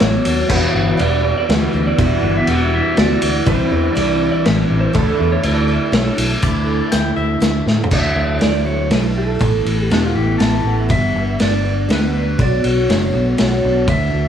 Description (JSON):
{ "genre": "folk rock and heartland rock", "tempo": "121 BPM", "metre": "3/4", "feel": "straight", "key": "D major", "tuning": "A4 = 440 Hz", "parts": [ { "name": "clean lap steel guitar", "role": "melody", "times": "0.0-14.3 s", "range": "A4 to F#5", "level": "-22 LUFS", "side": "right 3 dB", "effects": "none" }, { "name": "picked twelve-string acoustic guitar", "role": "accompaniment", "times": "0.0-14.3 s", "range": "E2 to C#5", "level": "-22 LUFS", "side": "left 4 dB", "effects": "none" }, { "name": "warm concert grand piano", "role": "accompaniment", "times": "0.0-6.2, 13.9-14.2 s", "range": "G3 to F#5", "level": "-29 LUFS", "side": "left 7 dB", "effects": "none" }, { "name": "electric guitar through a small old amp", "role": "riff", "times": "0.0-14.3 s", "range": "E2 to F#4", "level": "-23 LUFS", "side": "right 7 dB", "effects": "ensemble chorus" }, { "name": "fingered electric bass", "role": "bass", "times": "0.0-14.3 s", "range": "E1 to A2", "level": "-19 LUFS", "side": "equal", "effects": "none" }, { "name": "vintage drum kit", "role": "drums", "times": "0.0-14.0 s", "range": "crash cymbal, hi-hat, kick drum, ride cymbal, snare drum, toms", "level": "-19 LUFS", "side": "equal", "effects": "none" }, { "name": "pedal steel guitar", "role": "second line", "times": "6.4-7.6, 9.9-10.8 s", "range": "D4 to G5", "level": "-25 LUFS", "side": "left 6 dB", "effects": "none" } ], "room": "light reverb", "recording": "studio ambience", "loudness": "-14 LUFS", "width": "side -9 dB against mid", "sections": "0.0-6.4 A section; 6.4-7.9 B section; 7.9-14.3 C section", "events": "drum fill 7.7", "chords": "0.5 Emadd9; 3.5 Cadd9; 4.9 Dsus2; 7.9 Dadd9; 9.4 Asus2; 10.9 G; 12.4 Bmadd9", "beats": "0.01 | 0.50 0.99 1.49 | 1.98 2.48 2.97 | 3.46 3.96 4.45 | 4.94 5.44 5.93 | 6.43 6.92 7.42 | 7.91 8.41 8.91 | 9.40 9.90 10.40 | 10.89 11.39 11.89 | 12.38 12.88 13.38 | 13.87" }